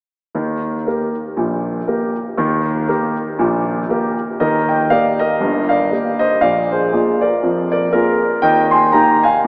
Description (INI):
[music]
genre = jazz, stride piano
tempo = 119 BPM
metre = 4/4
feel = swing 58% on 8ths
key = Eb major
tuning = A4 = 439 Hz
[part]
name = warm concert grand piano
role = solo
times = 0.3-9.5 s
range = G1 to C6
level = -17 LUFS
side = equal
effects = none
[sound]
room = wet cathedral reverb, RT60 5.6 s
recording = in a vast, echoing space, AM radio sound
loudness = -17 LUFS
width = mono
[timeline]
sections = 0.3-4.4 A section; 4.4-9.5 B section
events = none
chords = 0.3 Eb; 5.4 Ebmaj13/G; 6.4 Bb7; 8.4 Eb